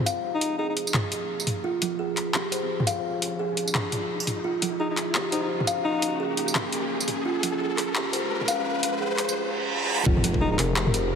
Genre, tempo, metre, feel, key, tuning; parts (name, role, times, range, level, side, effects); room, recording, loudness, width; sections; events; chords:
half-time drum and bass; 171 BPM; 4/4; swing 60% on 16ths, half-time; F minor; A4 = 438 Hz
deep dark ambient pad; sustained chords; 0.0-11.2 s; Ab3 to F5; -35 LUFS; left 2 dB; chorus, built-in reverb, sidechain pumping
drum and bass drum kit; drums; 0.0-11.0 s; handclaps, hi-hat, tambourine, toms; -28 LUFS; equal; overdrive, studio reverb
riser, reverse cymbal and impact; sound effects; 0.2-11.2 s; -32 LUFS; equal
kalimba; arpeggios; 0.1-11.1 s; F3 to F5; -28 LUFS; right 2 dB; digital delay
breathy alto saxophone; melody; 0.3-0.7, 4.8-6.2, 10.4-10.6 s; Eb4; -32 LUFS; left 2 dB; digital delay
dark detuned saw bass; bass; 10.1-11.2 s; F1; -26 LUFS; left 1 dB
electronic kick drum; drums; 10.1-10.4 s; -25 LUFS; left 1 dB; overdrive, studio reverb
pulsing gated texture; texture; 10.3-11.2 s; Bb4; -33 LUFS; left 2 dB; chorus, built-in reverb
wet huge ambient reverb, RT60 4.1 s; heavily compressed radio sound, multiband compression, high-pass filter; -23 LUFS; side -6 dB against mid
0.0-10.1 A section; 10.1-11.2 B section
build-up 0.0-10.1; filter sweep on ambient pad 0.0-10.1; riser 0.2-9.4; reverse cymbal 9.4-10.1; drop 10.1-11.2; impact 10.1-11.2
0.0 Fm; 4.4 Bbm; 10.1 Fm